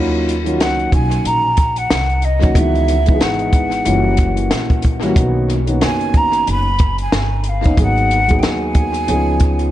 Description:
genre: hip hop, jazz-hop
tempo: 92 BPM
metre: 4/4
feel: swing 58% on 16ths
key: Eb minor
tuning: A4 = 440 Hz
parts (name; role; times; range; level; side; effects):
- dark grand piano; accompaniment; 0.0-9.7 s; Eb3 to Ab4; -19 LUFS; equal; tape echo
- upright bass; bass; 0.0-9.7 s; Gb1 to Eb2; -19 LUFS; equal; none
- compact cocktail drum kit; drums; 0.3-9.7 s; hi-hat, kick drum, snare drum; -17 LUFS; equal; vintage 12-bit sampler grit, tape echo
- breathy mellow jazz flute; melody; 0.6-9.7 s; Eb5 to B5; -19 LUFS; equal; tape echo
room: light reverb, small room ambience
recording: echo-heavy mix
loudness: -13 LUFS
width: side -13 dB against mid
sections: 0.0-9.7 A section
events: none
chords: 0.0 Ebm7; 2.6 Dbm11; 3.9 Gb7b9; 5.2 Bmaj7; 7.8 Abm7; 9.1 Db7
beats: 0.60 1.25 1.91 | 2.56 3.21 3.86 4.51 | 5.17 5.82 6.47 7.12 | 7.78 8.43 9.08

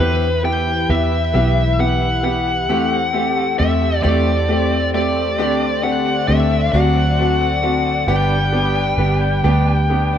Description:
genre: six-eight pop ballad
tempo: 44 BPM (dotted quarters)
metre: 6/8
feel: straight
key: G major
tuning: A4 = 440 Hz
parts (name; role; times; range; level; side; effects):
- bluesy overdriven lead guitar; melody; 0.0-10.2 s; B4 to G5; -20 LUFS; left 2 dB; distortion, ping-pong delay
- clear grand piano; accompaniment; 0.0-10.2 s; A3 to G4; -22 LUFS; right 1 dB; none
- warm analog pad; sustained chords; 0.0-10.2 s; D3 to D5; -26 LUFS; equal; chorus
- direct-recorded clean electric guitar; arpeggios; 0.0-10.2 s; E3 to E4; -27 LUFS; left 8 dB; none
- vintage muted fingered electric bass; bass; 0.0-10.2 s; G1 to E2; -19 LUFS; right 1 dB; none
room: moderate studio reverb, RT60 0.7 s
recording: band playing live in one room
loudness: -15 LUFS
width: side -9 dB against mid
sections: 0.0-10.2 A section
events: none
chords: 0.0 Em; 2.7 Am7/E; 5.4 D7sus4; 6.7 D7; 8.1 G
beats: 1.34 | 2.69 4.04 | 5.38 6.73 | 8.08 9.44

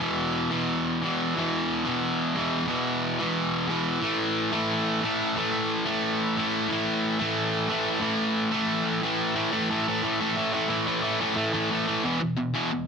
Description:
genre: punk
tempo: 179 BPM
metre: 4/4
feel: straight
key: unclear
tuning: A4 = 440 Hz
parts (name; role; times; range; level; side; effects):
- distorted electric guitar; solo; 0.0-12.9 s; E2 to A3; -24 LUFS; equal; distortion
room: moderate studio reverb, RT60 0.6 s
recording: dense, heavily limited modern master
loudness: -24 LUFS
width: side -6 dB against mid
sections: 0.0-9.4 A section; 9.4-12.0 B section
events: none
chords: 0.0 E5; 4.0 A5; 12.0 E5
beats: | 0.01 0.34 0.68 1.02 | 1.35 1.69 2.03 2.36 | 2.70 3.03 3.37 3.70 | 4.04 4.37 4.70 5.04 | 5.37 5.70 6.04 6.37 | 6.70 7.03 7.37 7.70 | 8.03 8.36 8.70 9.03 | 9.36 9.70 10.03 10.37 | 10.70 11.04 11.37 11.71 | 12.05 12.39 12.72

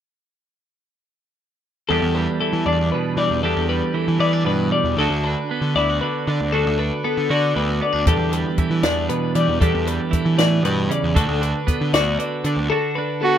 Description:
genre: math rock and midwest emo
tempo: 78 BPM (dotted quarters)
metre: 6/8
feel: straight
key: unclear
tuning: A4 = 439 Hz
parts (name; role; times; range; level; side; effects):
- twelve-string electric guitar; accompaniment; 1.9-13.4 s; E2 to G4; -22 LUFS; right 6 dB; none
- twelve-string electric guitar; arpeggios; 1.9-13.4 s; A4 to D5; -22 LUFS; left 7 dB; tape echo
- fuzz picked electric bass; bass; 1.9-12.7 s; D2 to E3; -22 LUFS; equal; overdrive
- compact cocktail drum kit; drums; 8.1-12.6 s; hi-hat, kick drum, snare drum; -21 LUFS; equal; none
- brilliant trumpet; melody; 13.2-13.4 s; F#4; -15 LUFS; right 3 dB; none
room: little or no reverb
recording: rough home demo mix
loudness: -18 LUFS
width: side -9 dB against mid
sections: 1.9-13.4 A section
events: none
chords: 1.9 Em7; 5.0 Bm7/D; 8.1 Em7; 11.2 Bm7/D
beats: | 1.89 2.66 | 3.44 4.21 | 4.98 5.75 | 6.52 7.29 | 8.06 8.84 | 9.61 10.38 | 11.15 11.92 | 12.70

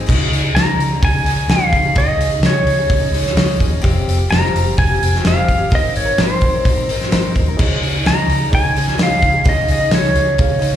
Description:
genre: folk rock and heartland rock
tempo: 128 BPM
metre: 4/4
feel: straight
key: unclear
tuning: A4 = 442 Hz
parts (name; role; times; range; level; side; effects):
- picked steel-string acoustic guitar; accompaniment; 0.0-10.8 s; F2 to Bb4; -25 LUFS; left 4 dB; slapback echo
- vintage muted picked electric bass; bass; 0.0-10.8 s; F1 to Eb2; -18 LUFS; equal; none
- loose indie drum kit; drums; 0.1-10.8 s; crash cymbal, hi-hat, kick drum, snare drum; -17 LUFS; equal; none
- pedal steel guitar; melody; 0.6-10.8 s; C5 to Bb5; -18 LUFS; equal; slapback echo, digital delay
- reed electric piano; accompaniment; 7.6-10.7 s; Eb4 to F5; -28 LUFS; right 5 dB; fast tremolo, slapback echo
room: light reverb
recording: live gig heard through the venue's PA, club reverb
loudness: -13 LUFS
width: side -10 dB against mid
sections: 0.1-10.8 A section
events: none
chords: 0.1 Dbsus2; 3.8 Fmadd9; 5.7 Abadd9; 7.6 Dbsus2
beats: | 0.07 0.55 1.02 1.49 | 1.96 2.43 2.90 3.37 | 3.84 4.30 4.77 5.24 | 5.71 6.18 6.65 7.12 | 7.58 8.05 8.52 8.99 | 9.46 9.92 10.39

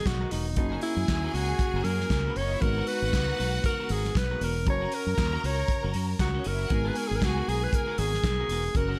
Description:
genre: disco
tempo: 117 BPM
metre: 4/4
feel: swing 56% on 16ths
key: G# minor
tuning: A4 = 440 Hz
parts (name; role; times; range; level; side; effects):
- breathy alto saxophone; melody; 0.0-9.0 s; D#4 to C#5; -33 LUFS; equal; analog delay
- clear studio string section; second line; 0.0-9.0 s; B3 to A#5; -39 LUFS; equal; none
- tine electric piano; accompaniment; 0.0-9.0 s; D#3 to B4; -40 LUFS; equal; overdrive
- clean electric guitar; accompaniment; 0.1-9.0 s; B3 to A#4; -44 LUFS; equal; none
- fingered electric bass; bass; 0.1-8.9 s; E1 to F#2; -32 LUFS; equal; none
- warm soul drum kit; drums; 0.1-8.9 s; handclaps, hi-hat, kick drum, snare drum; -33 LUFS; equal; none
room: light reverb, studio reverb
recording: none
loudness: -27 LUFS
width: mono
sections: 0.0-9.0 A section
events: none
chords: 0.0 G#m9; 0.6 F#; 2.6 G#m9; 4.7 F#; 6.7 G#m9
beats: 0.06 | 0.57 1.08 1.59 2.10 | 2.62 3.13 3.64 4.15 | 4.66 5.17 5.68 6.20 | 6.71 7.22 7.73 8.24 | 8.75

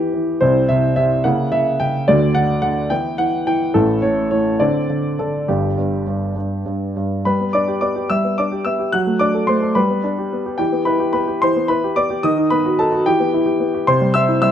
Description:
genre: classical-period piano sonatina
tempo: 72 BPM (dotted quarters)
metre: 6/8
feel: rubato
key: G major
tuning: A4 = 440 Hz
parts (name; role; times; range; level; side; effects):
- clear grand piano; solo; 0.0-14.5 s; G1 to F#6; -15 LUFS; equal; none
room: moderate stone room reverb, RT60 1.3 s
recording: none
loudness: -15 LUFS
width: side -9 dB against mid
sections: 0.0-7.2 A section; 7.2-14.5 A section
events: none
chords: 0.4 C; 1.2 C#dim7; 2.1 D; 2.9 E5; 3.7 A; 4.6 Amadd11/D; 5.5 G; 8.9 D/F#; 9.8 G; 10.6 Em; 12.2 B/D#; 13.1 Em; 13.9 C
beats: | 0.42 1.25 | 2.07 2.90 | 3.74 4.60 | 5.48 6.36 | 7.25 8.10 | 8.94 9.77 | 10.60 11.42 | 12.24 13.06 | 13.87

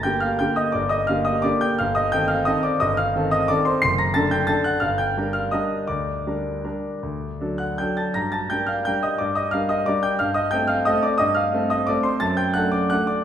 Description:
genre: classical, piano waltz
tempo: 153-189 BPM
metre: 3/4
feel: rubato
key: G minor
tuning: A4 = 440 Hz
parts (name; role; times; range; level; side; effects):
- clear concert grand piano; solo; 0.0-13.2 s; F#1 to C7; -20 LUFS; equal; none
room: wet recital hall reverb, RT60 1.5 s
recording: recorded in a church or concert hall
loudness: -20 LUFS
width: side -9 dB against mid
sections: 0.0-13.2 A section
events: none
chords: 0.0 Gm; 1.8 Am7b5/G; 3.8 D/F#; 4.8 Gm; 5.9 Gm/D; 7.0 D; 8.2 Gm; 10.2 Am7b5/G; 12.2 D/F#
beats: 0.04 0.40 | 0.75 1.09 1.46 | 1.80 2.14 2.48 | 2.82 3.15 3.50 | 3.83 4.16 4.49 | 4.82 5.16 5.53 | 5.89 6.26 6.64 | 7.02 7.40 7.79 | 8.16 8.52 8.87 | 9.21 9.54 9.88 | 10.21 10.53 10.87 | 11.20 11.53 11.88 | 12.22 12.56 12.91

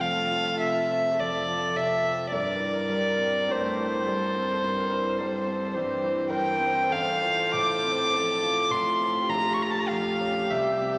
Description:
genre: classical, slow romantic movement for piano quintet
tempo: 46-55 BPM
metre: 4/4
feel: rubato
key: F major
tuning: A4 = 440 Hz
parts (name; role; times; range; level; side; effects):
- rich violin; melody; 0.0-11.0 s; C5 to D6; -28 LUFS; equal; none
- dark violin; second line; 0.0-11.0 s; G4 to C5; -34 LUFS; equal; none
- rich cello; second line; 0.0-11.0 s; E3 to A3; -39 LUFS; equal; none
- dark viola; accompaniment; 0.0-11.0 s; F4 to C5; -38 LUFS; equal; none
- warm concert grand piano; accompaniment; 0.0-11.0 s; A1 to F4; -36 LUFS; equal; none
room: wet concert hall reverb, RT60 2.2 s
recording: none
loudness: -26 LUFS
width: mono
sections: 0.0-11.0 A section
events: none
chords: 0.0 F; 2.3 C7/G; 6.9 F/A; 9.3 Gm7b5/Bb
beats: 0.00 1.19 | 2.33 3.50 4.63 5.75 | 6.91 8.15 9.29 10.50

